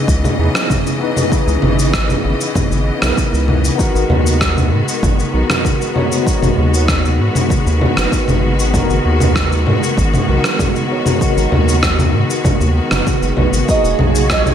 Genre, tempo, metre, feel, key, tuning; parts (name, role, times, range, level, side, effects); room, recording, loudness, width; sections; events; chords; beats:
sunset chillout; 97 BPM; 4/4; straight; G# minor; A4 = 440 Hz
barky tine electric piano; accompaniment; 0.0-14.5 s; A#3 to C#5; -20 LUFS; moving between left 4 dB and right 3 dB; medium stereo tremolo, auto-pan, digital delay, slapback echo
bright symphonic string section; sustained chords; 0.0-14.5 s; A#2 to D#5; -22 LUFS; left 1 dB
round analog bass; bass; 0.1-14.5 s; E1 to G#2; -16 LUFS; equal
electronic kick drum; drums; 0.1-14.4 s; -18 LUFS; equal; overdrive
electronic shaker, congas and rim click; drums; 0.1-14.5 s; -17 LUFS; equal
nylon-string guitar; melody; 13.7-14.5 s; D#5; -17 LUFS; right 5 dB
wind-like tuned noise texture; texture; 13.8-14.5 s; C#5 to C#6; -29 LUFS; right 2 dB; built-in reverb
moderate lush hall reverb, RT60 2.3 s; big arena sound; -12 LUFS; side -9 dB against mid
0.0-14.5 A section
0.0 C#m9; 3.8 G#m7; 13.7 Emaj9#11 (rootless)
0.08 0.70 | 1.32 1.94 2.56 3.17 | 3.79 4.41 5.03 5.65 | 6.27 6.88 7.50 8.12 | 8.74 9.36 9.98 10.60 | 11.21 11.83 12.45 13.07 | 13.69 14.31